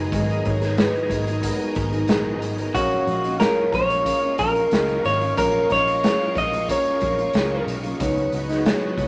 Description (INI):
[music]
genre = indie pop, bedroom pop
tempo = 92 BPM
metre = 4/4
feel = straight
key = unclear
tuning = A4 = 440 Hz
[part]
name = nylon-string guitar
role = accompaniment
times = 0.0-9.1 s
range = G#2 to A#4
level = -32 LUFS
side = equal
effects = vibrato effect
[part]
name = warbly lo-fi synth keys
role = accompaniment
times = 0.0-9.1 s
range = A#3 to E#5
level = -34 LUFS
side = equal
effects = chorus
[part]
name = string machine, cellos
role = sustained chords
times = 0.0-9.1 s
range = G#4 to C#6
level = -34 LUFS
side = equal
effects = ensemble chorus
[part]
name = vintage muted picked electric bass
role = bass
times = 0.0-9.1 s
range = F#1 to C#2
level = -31 LUFS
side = equal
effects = none
[part]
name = vibraphone with medium mallets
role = second line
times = 0.1-9.1 s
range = B4 to D#5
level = -31 LUFS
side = equal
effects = none
[part]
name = raw garage drum kit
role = drums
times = 0.1-9.1 s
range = hi-hat, kick drum, snare drum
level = -28 LUFS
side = equal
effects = none
[part]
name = electric guitar through a small old amp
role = melody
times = 2.7-7.6 s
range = F#4 to D#5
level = -23 LUFS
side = equal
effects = none
[sound]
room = moderate studio reverb, RT60 0.8 s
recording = none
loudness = -21 LUFS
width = mono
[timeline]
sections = 0.0-9.1 A section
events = none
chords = 0.0 G#m9; 2.7 F#maj7; 8.0 C#9sus4